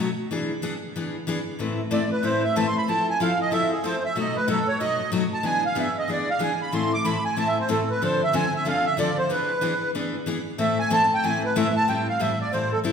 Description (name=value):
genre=jazz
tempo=187 BPM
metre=4/4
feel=swing 60% on 8ths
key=A harmonic minor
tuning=A4 = 442 Hz
part: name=picked steel-string acoustic guitar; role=accompaniment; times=0.0-12.9 s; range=A2 to B4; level=-25 LUFS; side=left 3 dB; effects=none
part: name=accordion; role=melody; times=1.9-12.8 s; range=G#4 to D6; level=-23 LUFS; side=right 2 dB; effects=light tremolo tuning
room=wet recital hall reverb, RT60 1.8 s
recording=recorded in a church or concert hall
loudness=-22 LUFS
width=side -6 dB against mid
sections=0.0-1.6 A section; 1.6-11.9 A section; 11.9-12.9 A section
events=accordion solo 1.6-12.9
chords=0.3 E7; 1.6 Amadd9; 2.9 Fmaj7; 4.2 B7; 5.4 E7; 6.7 Am; 8.0 Dm7; 9.3 E7; 10.6 Am; 11.9 Am7